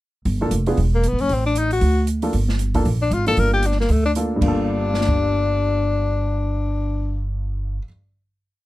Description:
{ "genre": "jazz, small-group swing and bop", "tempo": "231 BPM", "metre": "4/4", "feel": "swing 58% on 8ths", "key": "G minor", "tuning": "A4 = 440 Hz", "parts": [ { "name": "upright bass", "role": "bass", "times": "0.3-7.8 s", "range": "E1 to D2", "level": "-21 LUFS", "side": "right 1 dB", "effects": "none" }, { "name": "open jazz drum kit", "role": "drums", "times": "0.3-5.1 s", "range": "crash cymbal, hi-hat, kick drum, snare drum", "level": "-27 LUFS", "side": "equal", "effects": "none" }, { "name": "dark baby grand piano", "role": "accompaniment", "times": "0.4-7.9 s", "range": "G2 to A4", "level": "-25 LUFS", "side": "equal", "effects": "none" }, { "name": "clear tenor saxophone", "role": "melody", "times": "0.9-7.3 s", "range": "A3 to Bb4", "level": "-22 LUFS", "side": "left 3 dB", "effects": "none" } ], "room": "little or no reverb", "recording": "close, detailed microphones", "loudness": "-18 LUFS", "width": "side -17 dB against mid", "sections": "0.3-4.4 A section; 4.4-6.5 final chord", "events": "none", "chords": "0.3 Gm9; 0.8 E; 1.3 Adim; 1.8 D; 2.3 Gm9", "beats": "| 0.25 0.51 0.78 1.03 | 1.30 1.56 1.82 2.08 | 2.34 2.60 2.85 3.12 | 3.38 3.63 3.89 4.15 | 4.41 4.67 4.93 5.19 | 5.45 5.71 5.97 6.23" }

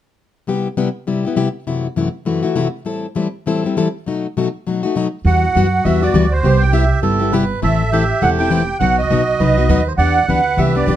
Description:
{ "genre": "acoustic string swing (jazz manouche)", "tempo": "202 BPM", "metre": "4/4", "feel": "swing 58% on 8ths", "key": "E minor", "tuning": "A4 = 440 Hz", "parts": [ { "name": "picked plugged-in steel-string acoustic guitar", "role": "accompaniment", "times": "0.5-11.0 s", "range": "F#2 to A4", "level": "-18 LUFS", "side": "left 4 dB", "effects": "none" }, { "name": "upright bass", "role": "bass", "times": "5.2-11.0 s", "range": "E1 to F#2", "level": "-17 LUFS", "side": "right 1 dB", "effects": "none" }, { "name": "musette accordion", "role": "melody", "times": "5.3-11.0 s", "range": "C5 to G5", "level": "-18 LUFS", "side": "right 4 dB", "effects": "plate reverb" }, { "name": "melodica", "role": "second line", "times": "5.3-11.0 s", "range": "F#4 to D5", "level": "-22 LUFS", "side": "right 6 dB", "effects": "none" } ], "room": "light reverb", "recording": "dark, warm production", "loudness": "-14 LUFS", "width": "side -11 dB against mid", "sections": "0.5-5.3 A section; 5.3-11.0 B section", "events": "none", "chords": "0.5 Cmaj7; 1.7 F#m7b5; 2.9 Am7; 4.1 B7; 5.3 Emadd9; 6.4 Cmaj7; 7.6 Am; 8.8 B; 10.0 Em7", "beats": "| 0.48 0.78 1.07 1.37 | 1.67 1.97 2.27 2.57 | 2.87 3.17 3.46 3.76 | 4.06 4.36 4.66 4.96 | 5.25 5.55 5.85 6.14 | 6.44 6.74 7.03 7.33 | 7.63 7.92 8.22 8.51 | 8.81 9.11 9.40 9.70 | 9.99 10.29 10.58 10.88" }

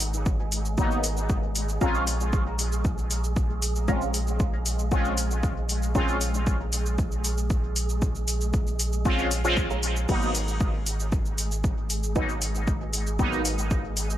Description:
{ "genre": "dub techno", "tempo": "116 BPM", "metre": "4/4", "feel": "straight", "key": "unclear", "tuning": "A4 = 443 Hz", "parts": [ { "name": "warm sub bass", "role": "bass", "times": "0.0-14.2 s", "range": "G#1 to A#1", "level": "-28 LUFS", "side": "equal", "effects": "sidechain pumping" }, { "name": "soft vintage rhythm box", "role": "drums", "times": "0.0-14.2 s", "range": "crash cymbal, hi-hat, shaker", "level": "-31 LUFS", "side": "equal", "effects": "none" }, { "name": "wind-like tuned noise texture", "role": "texture", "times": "0.0-14.2 s", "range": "G#3 to G#4", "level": "-36 LUFS", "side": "right 1 dB", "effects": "built-in reverb, sidechain pumping" }, { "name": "electronic kick drum", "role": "drums", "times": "0.3-13.8 s", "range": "none", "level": "-26 LUFS", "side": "equal", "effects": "overdrive" }, { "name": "resonant sweep polysynth", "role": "stabs", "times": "0.8-13.4 s", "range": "F#3 to E#4", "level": "-30 LUFS", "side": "equal", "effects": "chorus, phaser, sidechain pumping, dub echo" }, { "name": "filtered dub chord stab", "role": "riff", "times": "1.8-6.0, 9.7-12.3 s", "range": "F#4 to A#5", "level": "-39 LUFS", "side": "right 2 dB", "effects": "phaser, lush chorus, sidechain pumping, dub echo" } ], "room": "light reverb", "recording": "none", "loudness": "-23 LUFS", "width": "side -12 dB against mid", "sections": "0.0-14.2 A section", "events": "none", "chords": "0.0 N.C.; 1.8 A#m7; 10.1 G#m7", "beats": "0.26 0.78 1.30 | 1.81 2.33 2.85 3.37 | 3.88 4.40 4.92 5.43 | 5.95 6.47 6.99 7.50 | 8.02 8.54 9.05 9.57 | 10.09 10.61 11.12 11.64 | 12.16 12.68 13.19 13.71" }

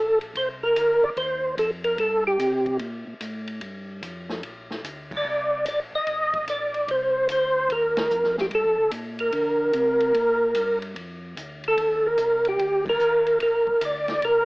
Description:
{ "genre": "soul jazz organ trio", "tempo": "147 BPM", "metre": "4/4", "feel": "swing 66% on 8ths", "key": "G minor", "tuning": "A4 = 439 Hz", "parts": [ { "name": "percussive tonewheel organ", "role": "melody", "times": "0.0-14.4 s", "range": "G4 to Eb5", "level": "-20 LUFS", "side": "equal", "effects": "slow rotary speaker, chorus vibrato, plate reverb" }, { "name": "mellow tonewheel organ", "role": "bass", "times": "0.0-14.4 s", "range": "A1 to D3", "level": "-36 LUFS", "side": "equal", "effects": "slow rotary speaker" }, { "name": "swinging big-band drum kit", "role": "drums", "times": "0.2-14.3 s", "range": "crash cymbal, hi-hat, kick drum, ride cymbal, snare drum", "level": "-36 LUFS", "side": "left 1 dB", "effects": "none" } ], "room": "moderate club reverb, RT60 0.6 s", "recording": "worn, warbling old tape, cassette tape, warbly pitch drift, AM radio sound", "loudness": "-21 LUFS", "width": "side -24 dB against mid", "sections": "0.0-14.4 A section", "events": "band accent 5.0, 7.9, 12.8", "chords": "0.4 Cm9; 2.0 Gm9; 5.3 Cm9; 8.5 Gm9; 11.8 Ebmaj7", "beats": "| 0.35 0.76 1.17 1.58 | 1.99 2.40 2.80 3.21 | 3.62 4.03 4.44 4.84 | 5.25 5.66 6.07 6.48 | 6.88 7.29 7.70 8.11 | 8.51 8.92 9.33 9.74 | 10.14 10.55 10.96 11.37 | 11.77 12.18 12.59 13.00 | 13.40 13.81 14.22" }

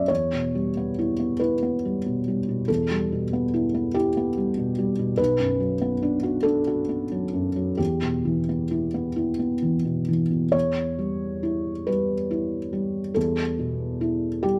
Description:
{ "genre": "neoclassical minimalist piano", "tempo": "43-48 BPM (dotted quarters)", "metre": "6/8", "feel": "rubato", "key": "E dorian", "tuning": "A4 = 440 Hz", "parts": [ { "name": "felt-muted upright piano", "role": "solo", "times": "0.0-14.6 s", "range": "B1 to E5", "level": "-25 LUFS", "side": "equal", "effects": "none" } ], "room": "light reverb", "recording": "none", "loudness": "-25 LUFS", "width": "mono", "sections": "0.0-10.5 A section; 10.5-14.6 A section", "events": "none", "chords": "0.1 Em; 5.2 Bm; 7.8 Em", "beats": "| 0.09 1.41 | 2.69 3.94 | 5.18 6.45 | 7.79 9.17 | 10.54 11.88 | 13.16 14.44" }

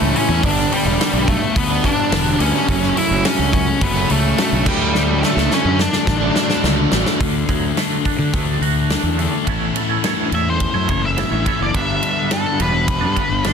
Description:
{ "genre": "quiet-loud alternative rock", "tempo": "106 BPM", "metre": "4/4", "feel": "straight", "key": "unclear", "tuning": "A4 = 441 Hz", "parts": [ { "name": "octave-fuzz lead guitar", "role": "melody", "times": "0.0-6.6, 10.3-13.5 s", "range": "G3 to E5", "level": "-21 LUFS", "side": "left 1 dB", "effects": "distortion" }, { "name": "fuzz guitar", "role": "riff", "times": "0.0-7.2 s", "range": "F#2 to E4", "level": "-22 LUFS", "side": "right 16 dB", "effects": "distortion" }, { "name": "sludgy distorted guitar", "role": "riff", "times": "0.0-13.5 s", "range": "F#2 to E4", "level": "-22 LUFS", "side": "left 12 dB", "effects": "overdrive" }, { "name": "fuzz fingered electric bass", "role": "bass", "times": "0.0-13.5 s", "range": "E1 to D3", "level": "-21 LUFS", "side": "right 1 dB", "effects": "overdrive" }, { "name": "big rock drum kit", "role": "drums", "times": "0.2-13.5 s", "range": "crash cymbal, hi-hat, kick drum, ride cymbal, snare drum", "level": "-21 LUFS", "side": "equal", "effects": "none" }, { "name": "twangy electric guitar", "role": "arpeggios", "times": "7.2-13.5 s", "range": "G2 to C#5", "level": "-25 LUFS", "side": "right 14 dB", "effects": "tremolo" } ], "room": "little or no reverb", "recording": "dense, heavily limited modern master", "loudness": "-15 LUFS", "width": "side -6 dB against mid", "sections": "0.0-7.2 A section; 7.2-9.5 B section; 9.5-13.5 C section", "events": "drum fill 4.9-7.2; lead electric guitar solo 9.5-13.5", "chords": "0.4 G; 2.7 F#m7; 4.7 D; 9.5 Aadd9; 11.7 G", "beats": "| 0.44 1.00 1.56 2.13 | 2.69 3.25 3.82 4.38 | 4.95 5.51 6.08 6.64 | 7.21 7.77 8.34 8.91 | 9.48 10.04 10.61 11.18 | 11.75 12.32 12.88 13.45" }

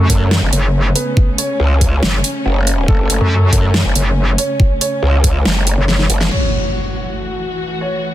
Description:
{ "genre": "heavy wobble dubstep", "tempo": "140 BPM", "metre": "4/4", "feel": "half-time", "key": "F# minor", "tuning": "A4 = 441 Hz", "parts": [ { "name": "dark baby grand piano", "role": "melody", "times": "0.0-8.1 s", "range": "A3 to C#5", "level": "-23 LUFS", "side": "right 2 dB", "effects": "digital delay" }, { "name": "dark symphonic string section", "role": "sustained chords", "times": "0.0-8.1 s", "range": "C#3 to F#4", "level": "-24 LUFS", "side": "left 1 dB", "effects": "sidechain pumping, low-pass filter" }, { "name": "metallic wobble bass", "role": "bass", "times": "0.0-6.1 s", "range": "F#1 to F#2", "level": "-14 LUFS", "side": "equal", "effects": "chorus, overdrive" }, { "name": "growl bass", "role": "bass", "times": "0.1-6.3 s", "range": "F#1 to F#2", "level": "-14 LUFS", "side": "equal", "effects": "chorus, overdrive" }, { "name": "dubstep drum kit", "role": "drums", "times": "0.1-6.4 s", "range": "crash cymbal, hi-hat, snare drum", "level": "-18 LUFS", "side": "equal", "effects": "overdrive, low-pass filter on cymbals, low-pass filter on hats, low-pass filter on snare, low-pass filter on room" }, { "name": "electronic kick drum", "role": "drums", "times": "0.1-5.3 s", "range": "none", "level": "-13 LUFS", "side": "equal", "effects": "overdrive" }, { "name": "impact", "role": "sound effects", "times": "6.3-8.0 s", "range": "none", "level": "-21 LUFS", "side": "equal", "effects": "none" } ], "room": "little or no reverb", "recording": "dense, heavily limited modern master", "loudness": "-12 LUFS", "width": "side -13 dB against mid", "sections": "0.0-6.3 A section; 6.3-8.1 B section", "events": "drop 0.0-6.3; drum fill 5.9-6.3; band accent 6.2; impact 6.3-8.0", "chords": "0.0 F#m; 6.3 F#m7", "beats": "0.31 0.74 | 1.17 1.60 2.03 2.45 | 2.88 3.31 3.74 4.17 | 4.60 5.03 5.45 5.88 | 6.31 6.74 7.17 7.60 | 8.03" }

